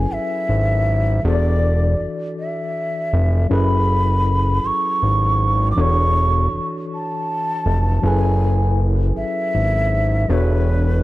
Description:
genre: slow six-eight R&B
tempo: 53 BPM (dotted quarters)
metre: 6/8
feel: straight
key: F# minor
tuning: A4 = 440 Hz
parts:
  - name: breathy mellow bansuri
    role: melody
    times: 0.0-11.0 s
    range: B4 to D6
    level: -22 LUFS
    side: equal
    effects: dub echo
  - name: tine electric piano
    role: accompaniment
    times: 0.0-11.0 s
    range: E3 to D5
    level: -25 LUFS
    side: left 2 dB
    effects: medium stereo tremolo, dub echo
  - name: fat analog bass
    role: bass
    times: 0.0-11.0 s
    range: E1 to G#1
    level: -17 LUFS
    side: equal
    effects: none
room: light reverb, small room ambience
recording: echo-heavy mix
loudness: -16 LUFS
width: side -17 dB against mid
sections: 0.0-11.0 A section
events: none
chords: 0.0 F#m11; 1.2 E9sus4; 3.5 F#m11; 5.8 E13sus4; 8.0 F#m11; 10.3 E13sus4

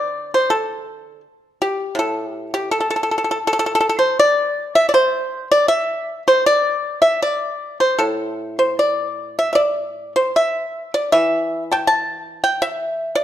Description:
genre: chinese traditional, Chinese solo plucked strings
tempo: 73-84 BPM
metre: 4/4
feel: rubato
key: A yu mode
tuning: A4 = 440 Hz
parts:
  - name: pipa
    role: solo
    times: 0.0-13.2 s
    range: A2 to A5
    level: -16 LUFS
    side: equal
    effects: none
room: light reverb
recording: dark, warm production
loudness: -16 LUFS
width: side -11 dB against mid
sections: 0.0-13.2 A section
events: none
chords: none

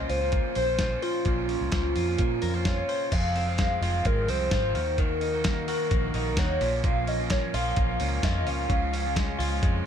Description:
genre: jangly indie pop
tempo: 129 BPM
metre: 4/4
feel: straight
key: unclear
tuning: A4 = 440 Hz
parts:
  - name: warbly nostalgic lead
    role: melody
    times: 0.0-9.9 s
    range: F4 to F5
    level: -29 LUFS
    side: equal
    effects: chorus
  - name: overdriven semi-hollow guitar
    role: accompaniment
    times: 0.0-9.9 s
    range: F2 to C5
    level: -34 LUFS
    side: right 6 dB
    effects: none
  - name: direct-recorded clean electric guitar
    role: arpeggios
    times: 0.0-9.9 s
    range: F2 to C5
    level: -33 LUFS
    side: left 6 dB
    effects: spring reverb
  - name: vintage muted fingered electric bass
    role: bass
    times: 0.0-9.8 s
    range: F1 to Bb2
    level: -30 LUFS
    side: equal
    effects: none
  - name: dusty soul sampler-style drum kit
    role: drums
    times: 0.1-9.7 s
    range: crash cymbal, hi-hat, kick drum, snare drum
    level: -29 LUFS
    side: equal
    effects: none
room: light reverb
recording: none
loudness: -24 LUFS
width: side -8 dB against mid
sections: 0.0-3.1 A section; 3.1-9.9 B section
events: none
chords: 0.0 Bbmadd9; 3.1 Fm; 4.8 Ebm; 6.6 Bbm; 8.7 Db

